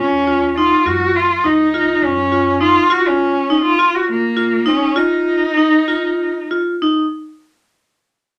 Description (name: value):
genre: contemporary instrumental, contemporary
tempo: 189-206 BPM (eighths)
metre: 7/8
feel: straight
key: Eb minor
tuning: A4 = 440 Hz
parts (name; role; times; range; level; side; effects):
- rich cello; melody; 0.0-6.5 s; Bb3 to Gb4; -18 LUFS; equal; none
- vibraphone with hard mallets; arpeggios; 0.0-7.0 s; Eb4 to F4; -19 LUFS; equal; none
- upright bass; bass; 0.0-2.7 s; Db2 to Gb2; -32 LUFS; equal; none
room: wet studio reverb, RT60 0.5 s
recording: none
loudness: -15 LUFS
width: mono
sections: 0.0-7.1 A section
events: slowing down 2.9-7.1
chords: 0.0 Ebsus2; 0.9 Gb5; 2.9 Ebsus2